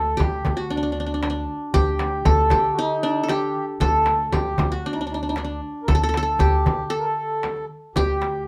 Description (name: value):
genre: Arabic maqam ensemble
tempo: 116 BPM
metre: 4/4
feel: straight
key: D maqam hijaz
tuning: A4 = 440 Hz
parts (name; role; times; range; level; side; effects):
- qanun; melody; 0.0-8.5 s; D4 to A4; -25 LUFS; equal; none
- mellow accordion; second line; 0.0-8.4 s; D4 to Bb4; -31 LUFS; equal; none
- upright bass; bass; 0.0-8.4 s; D2 to D3; -28 LUFS; equal; none
- darbuka; percussion; 0.2-8.3 s; none; -31 LUFS; equal; none
- frame drum; percussion; 0.2-8.3 s; none; -31 LUFS; equal; none
room: light reverb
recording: none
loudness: -22 LUFS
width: mono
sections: 0.0-8.5 A section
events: none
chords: none